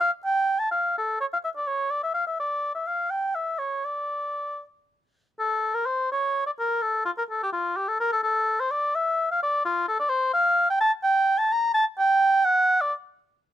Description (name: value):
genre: classical, baroque-style fantasia for unaccompanied oboe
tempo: 84 BPM (dotted quarters)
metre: 6/8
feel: rubato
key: D minor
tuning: A4 = 439 Hz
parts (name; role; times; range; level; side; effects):
- warm oboe; solo; 0.0-12.9 s; F4 to Bb5; -22 LUFS; equal; none
room: little or no reverb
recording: close, detailed microphones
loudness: -22 LUFS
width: side -11 dB against mid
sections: 0.0-5.4 A section; 5.4-13.5 B section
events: none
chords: none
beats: 0.23 | 0.96 1.67 | 2.38 3.10 | 3.85 4.62 | 5.39 6.11 | 6.82 7.54 | 8.26 8.96 | 9.65 10.35 | 11.05 11.75 | 12.46